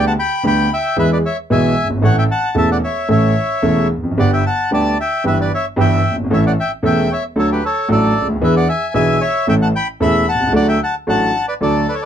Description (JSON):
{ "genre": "tango", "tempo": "113 BPM", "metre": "4/4", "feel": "rubato", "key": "D major", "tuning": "A4 = 439 Hz", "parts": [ { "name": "bandoneon", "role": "melody", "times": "0.0-12.1 s", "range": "G4 to B5", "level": "-18 LUFS", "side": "left 1 dB", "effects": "none" }, { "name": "warm concert grand piano", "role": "accompaniment", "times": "0.0-11.8 s", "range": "E1 to A4", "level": "-15 LUFS", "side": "right 1 dB", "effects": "none" } ], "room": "light reverb", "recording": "dark, warm production", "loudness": "-13 LUFS", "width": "side -9 dB against mid", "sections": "0.0-12.1 A section", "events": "none", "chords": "0.0 G/D; 1.0 E; 2.0 A; 4.2 G; 5.2 Em/G; 6.3 A; 7.4 D; 8.4 E7; 9.5 A; 10.5 D" }